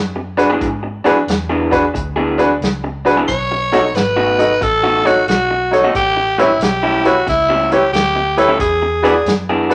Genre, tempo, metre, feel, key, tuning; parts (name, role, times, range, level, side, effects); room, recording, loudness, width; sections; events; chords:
electric blues shuffle; 90 BPM; 4/4; swing 66% on 8ths; E mixolydian; A4 = 437 Hz
vintage muted fingered electric bass; bass; 0.0-9.7 s; G#1 to G#2; -29 LUFS; equal
electric guitar through a small old amp; riff; 0.2-9.7 s; A2 to G#4; -22 LUFS; equal
bright grand piano; accompaniment; 0.4-9.7 s; D4 to D#5; -18 LUFS; equal
vintage drum kit; drums; 0.4-9.7 s; hi-hat, kick drum, snare drum; -24 LUFS; equal
growling tenor saxophone; melody; 3.3-9.7 s; D#4 to C#5; -18 LUFS; equal
moderate large studio reverb, RT60 1.2 s; -15 LUFS; mono
0.0-9.7 A section
0.0 E7; 3.3 B7; 5.9 A7; 8.6 E7